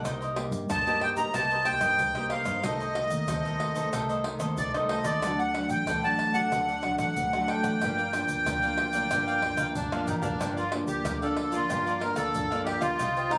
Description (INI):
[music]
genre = samba and choro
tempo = 93 BPM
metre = 4/4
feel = straight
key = G minor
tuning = A4 = 439 Hz
[part]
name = cavaquinho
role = accompaniment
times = 0.0-13.4 s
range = D4 to F#5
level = -38 LUFS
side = equal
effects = none
[part]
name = nylon-string guitar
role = accompaniment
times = 0.0-13.4 s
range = G2 to G4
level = -36 LUFS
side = equal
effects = none
[part]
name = vintage muted fingered electric bass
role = bass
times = 0.0-13.4 s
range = G1 to G2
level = -38 LUFS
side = equal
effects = none
[part]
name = tube shaker, surdo, pandeiro and tamborim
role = percussion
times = 0.1-13.4 s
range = none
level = -38 LUFS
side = equal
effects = none
[part]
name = accordion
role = melody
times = 0.7-13.4 s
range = D4 to Bb5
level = -30 LUFS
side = equal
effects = light tremolo tuning, plate reverb
[sound]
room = moderate small room reverb, RT60 0.6 s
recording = recorded on a phone in the room, club reverb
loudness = -28 LUFS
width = mono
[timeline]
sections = 0.0-10.4 A section; 10.4-13.4 A section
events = drum fill 9.9-10.4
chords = 0.1 Cm7; 2.6 Adim/C; 5.2 D; 7.8 Gm7